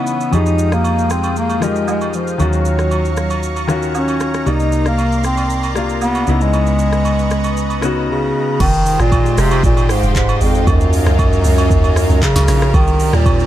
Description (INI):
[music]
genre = amapiano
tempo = 116 BPM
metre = 4/4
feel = straight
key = F minor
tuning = A4 = 439 Hz
[part]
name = clear bass clarinet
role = melody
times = 0.0-13.5 s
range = F2 to Eb4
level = -17 LUFS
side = equal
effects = tape echo
[part]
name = clear baby grand piano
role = accompaniment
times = 0.0-8.6 s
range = C3 to D5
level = -21 LUFS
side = left 4 dB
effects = none
[part]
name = lush unison pad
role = sustained chords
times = 0.0-13.5 s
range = Fb3 to Eb6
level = -23 LUFS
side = equal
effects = chorus, sidechain pumping
[part]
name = afro-pop drum kit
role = drums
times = 0.1-13.5 s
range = crash cymbal, handclaps, hi-hat, kick drum, rim click, shaker, snare drum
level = -20 LUFS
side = equal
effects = none
[part]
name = hollow-body short-scale fingered electric bass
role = bass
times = 0.3-8.3 s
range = C2 to F2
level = -19 LUFS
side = equal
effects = none
[part]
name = agogo bells and woodblock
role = percussion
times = 0.3-13.4 s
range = none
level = -28 LUFS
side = right 5 dB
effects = none
[part]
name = deep log drum bass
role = bass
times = 8.6-13.5 s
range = F1 to Eb2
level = -15 LUFS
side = equal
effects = none
[sound]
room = light reverb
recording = dark, warm production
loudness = -13 LUFS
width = side -12 dB against mid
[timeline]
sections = 0.0-8.6 A section; 8.6-13.5 B section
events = silent gap 8.1-8.6; drop 8.6-13.5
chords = 0.3 Fm9; 2.4 Ebm9; 4.5 Cm9; 6.3 Dbm9; 8.6 Fm9; 10.7 Ebm9; 12.7 Cm9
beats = | 0.33 0.84 1.36 1.88 | 2.40 2.91 3.43 3.95 | 4.46 4.98 5.50 6.02 | 6.53 7.05 7.57 8.09 | 8.60 9.12 9.64 10.15 | 10.67 11.19 11.71 12.22 | 12.74 13.26